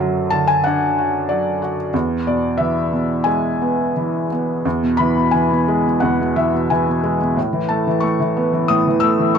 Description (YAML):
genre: classical, lyrical solo piano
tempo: 83-94 BPM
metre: 4/4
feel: rubato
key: E major from 4.7 s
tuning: A4 = 440 Hz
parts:
  - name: felt-muted upright piano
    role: solo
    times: 0.0-9.4 s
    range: E2 to E6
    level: -16 LUFS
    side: equal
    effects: none
room: light reverb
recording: dark, warm production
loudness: -16 LUFS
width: side -7 dB against mid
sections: 0.0-4.7 A section; 4.7-9.4 B section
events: none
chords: 0.0 D/F#; 1.9 E; 7.4 Asus2